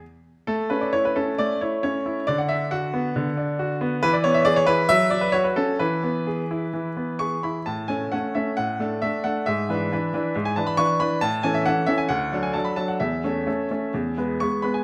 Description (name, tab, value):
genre	classical-period piano sonatina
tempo	126-141 BPM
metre	4/4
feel	rubato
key	A major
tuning	A4 = 440 Hz
part	clear baby grand piano	solo	0.5-14.8 s	D2 to C#6	-24 LUFS	equal	none
room	moderate recital hall reverb, RT60 1.4 s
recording	none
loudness	-24 LUFS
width	mono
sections	0.0-7.7 A section; 7.7-14.8 B section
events	none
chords	0.5 A; 2.3 Bm/D; 4.0 E; 4.9 F#5; 5.8 E; 7.7 A; 8.6 D/A; 9.5 E7/G#; 11.2 A; 12.1 D; 13.0 A/E; 13.9 E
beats	0.01 | 0.48 0.93 1.38 1.83 | 2.27 2.71 3.15 3.59 | 4.02 4.45 4.89 5.33 | 5.79 6.26 6.73 7.20 | 7.67 8.13 8.58 9.03 | 9.47 9.92 10.36 10.79 | 11.22 11.66 12.10 12.55 | 13.01 13.48 13.95 14.41